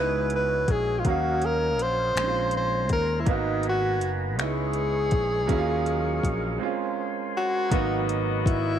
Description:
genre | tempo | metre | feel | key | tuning
slow six-eight R&B | 54 BPM (dotted quarters) | 6/8 | straight | G# minor | A4 = 440 Hz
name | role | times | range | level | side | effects
breathy tenor saxophone | melody | 0.0-8.8 s | D#4 to B#4 | -26 LUFS | left 1 dB | slapback echo
clear baby grand piano | accompaniment | 0.0-8.8 s | F#3 to E#5 | -30 LUFS | right 11 dB | none
tonewheel organ | sustained chords | 0.0-7.7 s | F#3 to C#6 | -35 LUFS | left 2 dB | overdrive, slow rotary speaker
fretless electric bass | bass | 0.0-8.8 s | F#1 to D#2 | -29 LUFS | left 1 dB | none
smooth R&B drum kit | drums | 0.3-8.6 s | finger snaps, hi-hat, kick drum | -26 LUFS | left 1 dB | overdrive
mellow horn section | stabs | 7.7-8.8 s | B3 to D#5 | -31 LUFS | left 15 dB | none
room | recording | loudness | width
light reverb | 1960s-style stereo with parts hard left and right | -23 LUFS | side -9 dB against mid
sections
0.0-7.7 A section; 7.7-8.8 B section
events
break 6.6-7.7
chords
0.0 C#m9; 1.1 D#m9; 2.2 A#m9; 3.3 G#m9; 4.4 C#m9; 5.5 D#m9; 6.6 A#m9; 7.7 G#m9

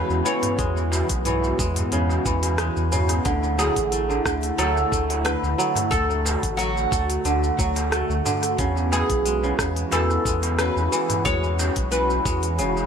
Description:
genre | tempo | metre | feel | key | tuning
organic downtempo | 90 BPM | 4/4 | swing 53% on 16ths | E mixolydian | A4 = 440 Hz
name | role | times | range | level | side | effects
oud | melody | 0.0-12.9 s | F#4 to C#5 | -27 LUFS | left 1 dB | tape echo
warm analog pad | sustained chords | 0.0-12.9 s | D3 to F#4 | -29 LUFS | equal | chorus, sidechain pumping
kora | arpeggios | 0.0-12.9 s | C#3 to A3 | -25 LUFS | right 2 dB | dub echo
warm sub bass | bass | 0.0-12.9 s | E1 to E2 | -26 LUFS | equal | none
organic electronic drum kit | drums | 0.1-12.9 s | hi-hat, rim click, shaker | -30 LUFS | equal | dub echo
darbuka | percussion | 0.1-12.9 s | none | -34 LUFS | right 1 dB | dub echo
electronic kick drum | drums | 0.6-12.4 s | none | -28 LUFS | equal | none
room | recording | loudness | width
light reverb, digital ambience | echo-heavy mix, lossy compression artefacts | -20 LUFS | side -7 dB against mid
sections
0.0-12.9 A section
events
kick drops out 2.6-3.3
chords
0.0 E6; 3.3 D; 8.6 E6

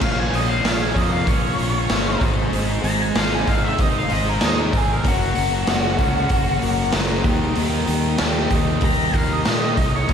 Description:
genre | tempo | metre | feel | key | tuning
classic rock | 95 BPM | 4/4 | straight | unclear | A4 = 440 Hz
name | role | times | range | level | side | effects
octave-fuzz lead guitar | melody | 0.0-10.1 s | Gb4 to Bb5 | -24 LUFS | left 1 dB | distortion, slapback echo
tonewheel organ | sustained chords | 0.0-10.1 s | Bb3 to Eb5 | -34 LUFS | equal | none
sludgy distorted guitar | riff | 0.0-10.1 s | Bb2 to Db5 | -26 LUFS | left 10 dB | overdrive, slapback echo
tight distorted guitar | riff | 0.0-10.1 s | Ab2 to Bb4 | -27 LUFS | right 11 dB | distortion, slapback echo
fuzz fingered electric bass | bass | 0.0-10.1 s | Gb1 to Bb2 | -24 LUFS | equal | overdrive
raw garage drum kit | drums | 0.0-10.1 s | crash cymbal, hi-hat, kick drum, snare drum | -21 LUFS | equal | none
thick fuzz guitar | riff | 10.1 s | Bb2 | -35 LUFS | right 1 dB | none
room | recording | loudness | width
light reverb, small room reverb | none | -17 LUFS | side -7 dB against mid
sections
0.0-10.1 A section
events
lead electric guitar solo 0.0-10.1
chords
0.0 Bbm; 2.2 Ab; 5.1 Gbadd9; 7.3 Eb

